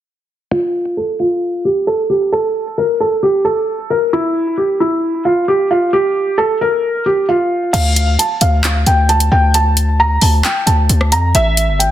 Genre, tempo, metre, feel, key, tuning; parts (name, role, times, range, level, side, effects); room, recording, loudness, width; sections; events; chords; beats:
hip hop, trap; 133 BPM; 4/4; half-time; D minor; A4 = 440 Hz
felt-muted upright piano; melody; 0.5-11.9 s; E4 to Bb5; -14 LUFS; right 1 dB; low-pass filter
hard-hitting 808-style bass; bass; 7.7-11.9 s; G1 to F2; -13 LUFS; equal
trap drum kit; drums; 7.7-11.9 s; crash cymbal, handclaps, hi-hat, rim click; -17 LUFS; left 1 dB; overdrive
light reverb; dense, heavily limited modern master; -12 LUFS; side -12 dB against mid
0.5-7.7 A section; 7.7-11.9 B section
filter sweep on felt piano 0.5-7.7
0.5 N.C.; 7.7 Dm; 11.3 A5
| 0.52 0.97 1.42 1.87 | 2.32 2.77 3.23 3.68 | 4.13 4.58 5.03 5.48 | 5.93 6.38 6.83 7.29 | 7.74 8.19 8.64 9.09 | 9.54 9.99 10.44 10.90 | 11.35 11.80